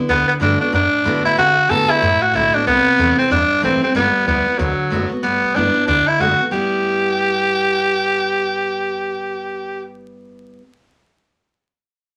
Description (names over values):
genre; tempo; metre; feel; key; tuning
rockabilly; 186 BPM; 4/4; swing 59% on 8ths; G major; A4 = 439 Hz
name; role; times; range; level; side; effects
picked steel-string acoustic guitar; accompaniment; 0.0-10.6 s; G2 to F#4; -25 LUFS; equal; none
raspy tenor saxophone; melody; 0.1-9.9 s; F#3 to A4; -18 LUFS; equal; none
upright bass; bass; 0.1-10.6 s; F#1 to C3; -28 LUFS; equal; none
room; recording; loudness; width
wet studio reverb, RT60 0.6 s; vinyl crackle; -17 LUFS; mono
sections
0.0-5.2 A section; 5.2-6.5 B section; 6.5-9.1 C section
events
none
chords
0.1 D6; 2.7 C6; 3.9 G6; 4.6 D6; 5.2 G6; 5.9 D6; 6.5 G6